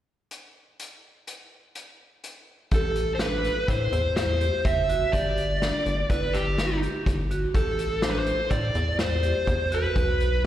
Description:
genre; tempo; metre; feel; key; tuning
progressive instrumental, band music in an uneven meter; 124 BPM; 5/4; straight; A dorian; A4 = 439 Hz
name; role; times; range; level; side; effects
vintage drum kit; drums; 0.3-10.3 s; hi-hat, kick drum, snare drum; -29 LUFS; equal; none
dark smooth lead guitar; melody; 2.7-10.4 s; G4 to E5; -26 LUFS; right 1 dB; overdrive, slapback echo, ping-pong delay
vibraphone with medium hard mallets; arpeggios; 2.7-10.2 s; D4 to G4; -33 LUFS; right 1 dB; slapback echo, ping-pong delay
rubbery square bass; bass; 2.7-10.5 s; F#1 to A2; -27 LUFS; equal; none
room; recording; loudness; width
light reverb; live gig heard through the venue's PA, recital hall reverb; -22 LUFS; side -12 dB against mid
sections
0.3-2.7 A section; 2.7-10.5 B section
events
none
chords
0.3 N.C.; 2.7 Am7; 5.1 G5; 7.5 Am7; 10.0 B5

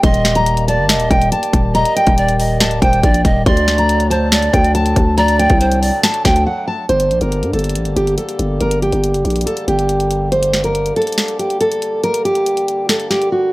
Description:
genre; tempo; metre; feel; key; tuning
hip hop, trap; 140 BPM; 4/4; half-time; G harmonic minor; A4 = 440 Hz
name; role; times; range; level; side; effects
fingerpicked steel-string acoustic guitar; melody; 0.0-13.5 s; F#4 to C6; -16 LUFS; equal; low-pass filter
polished pan flute; second line; 0.0-6.0 s; C5 to Eb5; -19 LUFS; right 2 dB; tape echo
hand-pumped harmonium; sustained chords; 0.0-13.5 s; D3 to G4; -26 LUFS; equal; none
growling 808-style bass; bass; 0.0-10.9 s; D1 to G2; -17 LUFS; equal; none
trap drum kit; drums; 0.0-13.3 s; hi-hat, kick drum, snare drum; -17 LUFS; equal; none
room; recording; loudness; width
small room reverb; dry, gritty hardware recording; -12 LUFS; side -20 dB against mid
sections
0.0-6.9 A section; 6.9-13.5 B section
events
break 6.5-6.9; drums muted 13.3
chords
0.0 Eb; 3.5 D; 6.9 Gm

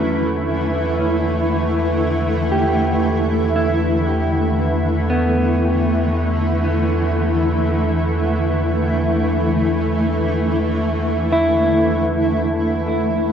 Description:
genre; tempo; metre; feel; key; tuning
ambient; free time; none; none; unclear; A4 = 440 Hz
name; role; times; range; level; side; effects
shimmering ambient pad; sustained chords; 0.0-13.3 s; D3 to B4; -18 LUFS; equal; chorus, built-in reverb
mellow electric guitar; arpeggios; 0.0-12.9 s; B3 to G4; -23 LUFS; equal; diffuse ambient delay
warm sub bass; bass; 0.0-13.3 s; E2; -22 LUFS; equal; none
room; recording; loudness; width
wet concert hall reverb, RT60 2.3 s; worn, warbling old tape, cassette tape, warbly pitch drift; -16 LUFS; side -8 dB against mid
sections
0.0-13.3 A section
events
none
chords
0.0 E7(no3)

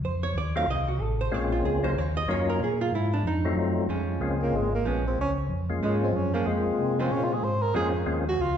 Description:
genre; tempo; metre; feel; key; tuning
jazz; 187 BPM; 4/4; swing 62% on 8ths; Bb minor; A4 = 440 Hz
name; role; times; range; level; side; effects
archtop guitar, miked and amplified; accompaniment; 0.0-8.2 s; F3 to F5; -30 LUFS; right 3 dB; none
mellow tonewheel organ; bass; 0.0-8.6 s; Ab1 to C3; -28 LUFS; equal; chorus vibrato, slow rotary speaker
percussive tonewheel organ; melody; 0.6-8.2 s; Gb3 to F4; -30 LUFS; left 4 dB; slow rotary speaker, overdrive
mellow tenor saxophone; melody; 4.4-8.6 s; Ab3 to C5; -28 LUFS; right 2 dB; none
room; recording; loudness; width
wet recital hall reverb, RT60 1.5 s; recorded in a church or concert hall, nothing above 8.0 kHz; -24 LUFS; side -8 dB against mid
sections
0.0-3.9 A section; 3.9-8.6 A section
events
hollow-body jazz guitar solo 0.0-3.9; tenor saxophone solo 3.9-8.6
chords
0.0 F7; 1.3 Bbm7; 2.0 Ebm7; 2.6 Bb7#11; 3.2 F7b9; 3.9 Bbm7

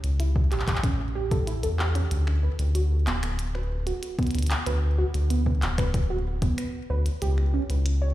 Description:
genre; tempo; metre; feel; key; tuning
IDM; 94 BPM; 4/4; straight; D major; A4 = 440 Hz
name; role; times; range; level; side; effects
round analog bass; bass; 0.0-8.1 s; D1 to E2; -24 LUFS; equal; none
glitchy drum kit; drums; 0.0-8.0 s; finger snaps, handclaps, hi-hat; -34 LUFS; equal; overdrive, studio reverb, ping-pong delay
warbly dusty pluck; arpeggios; 0.2-8.1 s; B3 to C#5; -32 LUFS; right 2 dB; chorus, cassette tape, tape echo
electronic kick drum; drums; 0.4-6.5 s; none; -25 LUFS; equal; overdrive, studio reverb
room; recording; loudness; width
little or no reverb; played on a big sound system in a bare room, large studio reverb; -23 LUFS; side -15 dB against mid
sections
0.0-8.1 A section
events
none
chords
0.0 A7; 2.1 D6; 7.2 A7 (rootless)

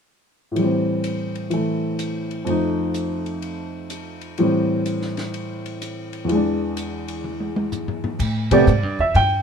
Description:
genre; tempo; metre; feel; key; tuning
jazz piano trio; 126 BPM; 4/4; swing 66% on 8ths; A minor; A4 = 440 Hz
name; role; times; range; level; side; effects
warm baby grand piano; melody; 0.5-9.4 s; E2 to G5; -21 LUFS; equal; none
compact cocktail drum kit; drums; 0.6-9.3 s; crash cymbal, hi-hat, kick drum, ride cymbal, snare drum, toms; -31 LUFS; left 2 dB; none
upright bass; bass; 8.2-9.4 s; E2 to A2; -20 LUFS; equal; none
room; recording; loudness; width
light reverb; minimal, uncompressed stereo recording; -20 LUFS; side -6 dB against mid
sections
0.6-8.2 A section; 8.2-9.4 B section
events
drum fill 7.2-8.2; band accent 8.4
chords
0.6 Am7; 2.5 F7; 4.4 Am7; 6.3 E7; 8.2 A7(no3)

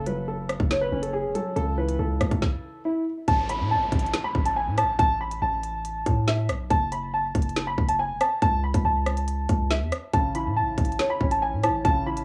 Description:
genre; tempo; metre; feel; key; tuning
hip hop, drill; 140 BPM; 4/4; half-time; unclear; A4 = 437 Hz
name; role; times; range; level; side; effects
dark grand piano; melody; 0.0-12.2 s; E4 to B5; -28 LUFS; equal; tape echo
felt-muted upright piano; accompaniment; 0.0-2.8, 10.1-12.2 s; C#3 to C#5; -32 LUFS; equal; cassette tape
hard-hitting 808-style bass; bass; 0.0-12.2 s; E1 to A2; -31 LUFS; equal; none
drill drum kit; drums; 0.1-12.2 s; hi-hat, kick drum, rim click, snare drum; -28 LUFS; equal; cassette tape
downlifter; sound effects; 3.3-6.7 s; none; -41 LUFS; equal; none
room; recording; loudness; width
light reverb; home recording on cassette, small room ambience; -25 LUFS; mono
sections
0.0-3.3 A section; 3.3-12.2 B section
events
stop 2.4-3.3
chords
0.0 F#m; 1.6 C#m; 3.3 N.C.; 6.7 F#m; 8.4 N.C.; 10.1 A

